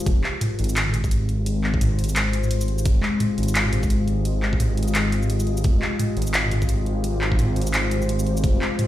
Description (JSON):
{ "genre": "half-time drum and bass", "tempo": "172 BPM", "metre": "4/4", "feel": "swing 59% on 16ths, half-time", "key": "F minor", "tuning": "A4 = 440 Hz", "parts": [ { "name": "deep dark ambient pad", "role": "sustained chords", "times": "0.0-8.9 s", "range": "Ab3 to Eb5", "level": "-27 LUFS", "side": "left 2 dB", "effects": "chorus, built-in reverb, sidechain pumping" }, { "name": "dark detuned saw bass", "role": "bass", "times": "0.1-8.6 s", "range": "F1 to Ab1", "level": "-23 LUFS", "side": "equal", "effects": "none" }, { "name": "drum and bass drum kit", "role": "drums", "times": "0.1-8.9 s", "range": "handclaps, hi-hat, shaker, toms", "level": "-25 LUFS", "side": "equal", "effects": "overdrive" }, { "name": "electronic kick drum", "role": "drums", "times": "0.1-8.5 s", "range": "none", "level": "-21 LUFS", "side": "equal", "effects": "overdrive" } ], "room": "light reverb", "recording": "played on a big sound system in a bare room, large studio reverb", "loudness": "-19 LUFS", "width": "side -13 dB against mid", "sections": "0.1-8.9 A section", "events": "drop 0.1-8.9", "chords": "0.1 Fmadd9", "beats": "| 0.07 0.42 0.77 1.11 | 1.46 1.81 2.16 2.51 | 2.86 3.21 3.56 3.90 | 4.25 4.60 4.95 5.30 | 5.65 6.00 6.35 6.70 | 7.04 7.39 7.74 8.09 | 8.44 8.79" }